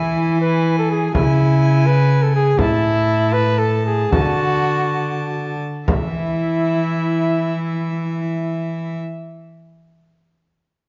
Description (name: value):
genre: classical, renaissance-style consort dance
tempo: 64-83 BPM (dotted quarters)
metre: 6/8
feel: straight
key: unclear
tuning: A4 = 440 Hz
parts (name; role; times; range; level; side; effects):
- mellow cornet; melody; 0.0-9.0 s; E4 to B4; -23 LUFS; equal; none
- warm violin; second line; 0.0-9.0 s; E5 to A5; -31 LUFS; equal; none
- rich cello; bass; 0.0-9.0 s; A2 to E3; -21 LUFS; equal; none
- frame drum; percussion; 1.1-6.2 s; none; -24 LUFS; equal; none
room: moderate recital hall reverb, RT60 1.4 s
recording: dark, warm production, nothing above 7.4 kHz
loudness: -18 LUFS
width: mono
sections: 0.0-5.9 A section; 5.9-9.6 B section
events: slowing down 1.9-5.9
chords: 0.0 E; 1.1 C#m; 2.6 A5; 4.1 D; 5.9 N.C.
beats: 0.43 | 1.15 1.87 | 2.59 3.34 | 4.12 4.97 | 5.88 6.82 | 7.76 8.70